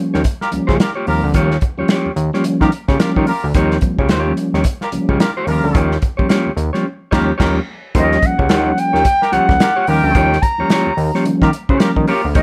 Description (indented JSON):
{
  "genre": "funk",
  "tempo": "109 BPM",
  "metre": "4/4",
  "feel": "swing 60% on 16ths",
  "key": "Eb mixolydian",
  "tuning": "A4 = 440 Hz",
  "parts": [
    { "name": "mellow tonewheel organ", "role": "stabs", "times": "0.0-12.4 s", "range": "F3 to Db4", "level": "-22 LUFS", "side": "equal", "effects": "chorus vibrato, stopped rotary speaker" },
    { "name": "clean electric guitar", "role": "accompaniment", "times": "0.1-12.4 s", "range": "Bb3 to Db5", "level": "-24 LUFS", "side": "equal", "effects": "none" },
    { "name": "fat analog bass", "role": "bass", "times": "0.1-12.4 s", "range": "Db2 to Eb3", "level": "-20 LUFS", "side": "equal", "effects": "none" },
    { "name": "warm soul drum kit", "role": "drums", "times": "0.1-12.4 s", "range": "crash cymbal, hi-hat, kick drum, snare drum", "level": "-20 LUFS", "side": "equal", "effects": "none" },
    { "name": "clear horn section", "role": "second line", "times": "0.4-12.3 s", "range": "F4 to Bb4", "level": "-24 LUFS", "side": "equal", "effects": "none" },
    { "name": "silver concert flute", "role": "melody", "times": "8.0-12.4 s", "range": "Eb5 to Bb5", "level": "-18 LUFS", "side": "equal", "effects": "none" }
  ],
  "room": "light reverb",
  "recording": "none",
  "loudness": "-16 LUFS",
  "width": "mono",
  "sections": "0.0-8.0 A section; 8.0-12.4 B section",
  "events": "band accent 6.9-8.0",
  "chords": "0.0 Eb9",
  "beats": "0.25 0.80 | 1.35 1.90 2.45 3.00 | 3.55 4.10 4.65 5.20 | 5.75 6.30 6.85 7.40 | 7.95 8.50 9.05 9.60 | 10.15 10.70 11.26 11.81 | 12.36"
}